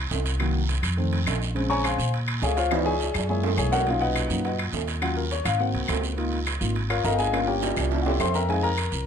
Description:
Afro-Cuban jazz; 208 BPM; 4/4; straight; A4 = 444 Hz
upright bass; bass; 0.0-9.1 s; G1 to Bb2; -26 LUFS; equal
guiro; percussion; 0.1-9.1 s; -36 LUFS; right 7 dB
timbales; percussion; 0.1-8.9 s; -31 LUFS; right 6 dB
warm grand piano; accompaniment; 0.4-9.0 s; A#2 to Db6; -26 LUFS; left 2 dB
claves; percussion; 0.4-8.9 s; -34 LUFS; left 4 dB
light reverb; close, detailed microphones; -22 LUFS; side -7 dB against mid
0.0-3.9 A section; 3.9-9.1 A section
grand piano solo 0.0-9.1; drum fill 2.7-3.9, 7.6-8.5
0.4 Cm7b5; 1.0 F7; 1.6 Bbm9; 2.7 Dbm7; 3.3 Gb9; 3.9 Bmaj7; 5.0 Ebm9; 5.6 Ab7; 6.2 Db69; 7.3 Gm7b5; 7.9 C7b9; 8.5 Fm7

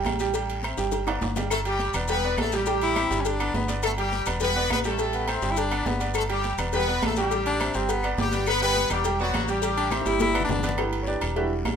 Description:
latin, salsa; 207 BPM; 4/4; straight; A4 = 441 Hz
bright concert grand piano; accompaniment; 0.0-11.8 s; G3 to G5; -29 LUFS; right 4 dB
deep dub fingered electric bass; bass; 0.0-11.8 s; E1 to A1; -30 LUFS; equal
congas; percussion; 0.0-11.8 s; -35 LUFS; left 1 dB
cowbell and bongos; percussion; 0.0-11.8 s; -34 LUFS; left 8 dB
maracas; percussion; 0.0-10.8 s; -39 LUFS; left 8 dB
claves; percussion; 0.1-11.8 s; -39 LUFS; left 4 dB
guiro; percussion; 0.1-11.8 s; -41 LUFS; left 5 dB
timbales and agogo bells; percussion; 0.1-11.8 s; -33 LUFS; right 5 dB
brilliant horn section; melody; 1.5-10.4 s; F#3 to B4; -26 LUFS; left 2 dB
bright baritone saxophone; second line; 2.8-10.8 s; B3 to E4; -27 LUFS; left 3 dB
light reverb; minimal, uncompressed stereo recording; -22 LUFS; side -7 dB against mid
0.0-1.5 A section; 1.5-10.8 B section
drum fill 0.8-1.5, 9.9-10.8
0.3 Am7; 0.9 G; 1.5 Em7; 2.7 Am7; 3.3 Em7; 5.0 Am7; 5.6 Em7; 7.3 Am7; 7.9 G6; 9.0 Em7; 9.6 Am7; 10.2 G; 10.8 G6

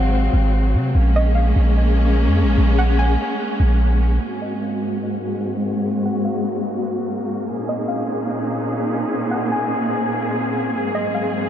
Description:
hip hop, atmospheric cloud-rap; 147 BPM; 4/4; half-time; A4 = 440 Hz
soft round pluck; melody; 0.0-11.5 s; Eb5 to Ab5; -28 LUFS; equal; chorus, low-pass filter, analog delay
dark symphonic string section; sustained chords; 0.0-11.5 s; Ab2 to Ab4; -21 LUFS; left 1 dB; low-pass filter
long sustained 808-style bass; bass; 0.0-4.2 s; Ab1 to C3; -16 LUFS; equal
moderate huge ambient reverb, RT60 7.2 s; dreamy mix soaked in reverb; -17 LUFS; side -10 dB against mid
0.0-4.2 A section; 4.2-11.5 B section
filter sweep 4.2-11.5
0.0 Ab7; 0.9 Bbm7; 4.2 Ab7; 7.5 Bbm11; 10.7 Ab7

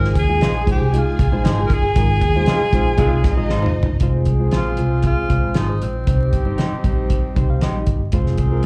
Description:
uptempo 1960s-style soul; 117 BPM; 4/4; straight; Ab major; A4 = 436 Hz
breathy tenor saxophone; melody; 0.0-6.9 s; C4 to Bb4; -26 LUFS; equal; plate reverb
rich studio string section; second line; 0.0-4.0 s; Eb4 to Ab5; -28 LUFS; equal; slapback echo, plate reverb
reed electric piano; accompaniment; 0.0-8.7 s; G3 to G5; -28 LUFS; equal; overdrive, fast tremolo, plate reverb, slapback echo
vintage muted fingered electric bass; bass; 0.0-8.6 s; F1 to Eb2; -22 LUFS; equal
cloth-damped thuddy drum kit; drums; 0.0-8.7 s; hi-hat, kick drum, snare drum, toms; -22 LUFS; equal
electric guitar through a small old amp; stabs; 0.4-7.8 s; Eb4 to C5; -32 LUFS; equal; plate reverb, slapback echo
mellow horn section; second line; 2.5-8.7 s; F3 to Ab4; -29 LUFS; equal; slapback echo, plate reverb
light reverb; live gig heard through the venue's PA, club reverb, vinyl crackle; -18 LUFS; mono
0.0-4.0 A section; 4.0-8.7 B section
band accent 2.0-4.0; drum fill 3.5-4.0; reed electric piano fill 7.1-8.1
0.0 Ab6; 4.0 Fm; 6.1 Cm; 8.1 Fm

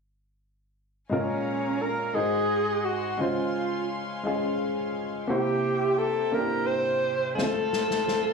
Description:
slow gospel; 58 BPM (dotted quarters); 6/8; straight; Bb minor; A4 = 441 Hz
warm alto saxophone; melody; 1.1-8.3 s; Db4 to C5; -26 LUFS; right 1 dB; plate reverb, slapback echo
warm upright piano; accompaniment; 1.1-8.3 s; Ab2 to C5; -29 LUFS; left 1 dB; plate reverb, slapback echo
warm studio string section; sustained chords; 1.1-8.3 s; Db4 to C6; -37 LUFS; left 2 dB; plate reverb
snare drum; drums; 7.4-8.2 s; -32 LUFS; equal
moderate club reverb, RT60 0.7 s; live gig heard through the venue's PA, club reverb, faint mains hum; -24 LUFS; side -4 dB against mid
1.1-8.3 A section
drum fill 7.4-8.3
1.1 Bbm7; 2.2 Ab7; 3.2 Dbmaj7; 5.3 C7; 7.4 F

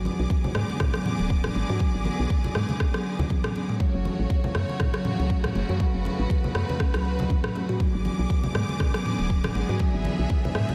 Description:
afro house; 120 BPM; 4/4; swing 56% on 16ths; A4 = 440 Hz
clear studio string section; sustained chords; 0.0-10.7 s; C#3 to D6; -35 LUFS; equal; sidechain pumping
woody FM bass; bass; 0.0-10.6 s; D1 to G#2; -30 LUFS; equal; sidechain pumping
kalimba; arpeggios; 0.1-10.7 s; E3 to F#4; -33 LUFS; equal; sidechain pumping
congas; percussion; 0.1-10.7 s; -35 LUFS; equal
electronic kick drum; drums; 0.3-10.4 s; -27 LUFS; equal
afro-pop drum kit; drums; 0.5-10.7 s; rim click, toms; -34 LUFS; equal
light reverb; -25 LUFS; mono
0.0-10.7 A section
0.0 G#dim; 3.8 F#m; 7.8 G#dim

